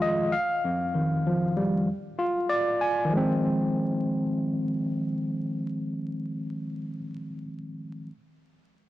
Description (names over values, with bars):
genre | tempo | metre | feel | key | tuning
hip hop | 97 BPM | 4/4 | swing 56% on 16ths | F dorian | A4 = 443 Hz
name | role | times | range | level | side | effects
tine electric piano | accompaniment | 0.0-8.1 s | F2 to Ab5 | -25 LUFS | equal | medium stereo tremolo, cassette tape, high-pass filter, low-pass filter
room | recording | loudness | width
light reverb | blown-out, overdriven recording, vinyl crackle, overdrive | -25 LUFS | side -15 dB against mid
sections
0.0-3.1 A section; 3.1-5.6 B section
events
none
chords
0.3 Ebadd9/F; 1.9 Fm6; 3.1 Fm7